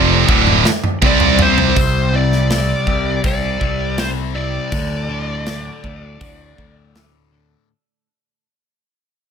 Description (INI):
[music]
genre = quiet-loud alternative rock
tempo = 81 BPM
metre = 4/4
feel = straight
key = D mixolydian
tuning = A4 = 439 Hz
[part]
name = high-gain lead guitar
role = melody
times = 0.0-6.9 s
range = C5 to D5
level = -22 LUFS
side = right 1 dB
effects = distortion, plate reverb
[part]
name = cranked stack guitar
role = riff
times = 0.0-7.7 s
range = D2 to C4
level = -22 LUFS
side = left 11 dB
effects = overdrive, phaser
[part]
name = heavy high-gain guitar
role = riff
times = 0.0-1.8 s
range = D2 to C4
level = -16 LUFS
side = right 15 dB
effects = distortion
[part]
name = scooped high-gain guitar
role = riff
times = 0.0-1.8 s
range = D2 to C4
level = -19 LUFS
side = equal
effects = distortion
[part]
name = growling fingered electric bass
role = bass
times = 0.0-7.5 s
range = D1 to D2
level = -21 LUFS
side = equal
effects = overdrive
[part]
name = big rock drum kit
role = drums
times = 0.3-7.1 s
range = hi-hat, kick drum, snare drum, toms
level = -19 LUFS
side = right 1 dB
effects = none
[part]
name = twelve-string electric guitar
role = arpeggios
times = 1.8-7.7 s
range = D2 to C5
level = -26 LUFS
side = right 4 dB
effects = wide subtle chorus
[sound]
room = light reverb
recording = none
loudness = -14 LUFS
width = side -7 dB against mid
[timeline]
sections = 0.0-1.8 A section; 1.8-7.7 B section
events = drum fill 0.0-1.8; fade-out 1.8-7.7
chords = 0.3 D5; 1.0 C5; 1.8 Cadd9; 4.7 D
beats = 0.28 1.02 | 1.76 2.50 3.24 3.98 | 4.72 5.46 6.21 6.95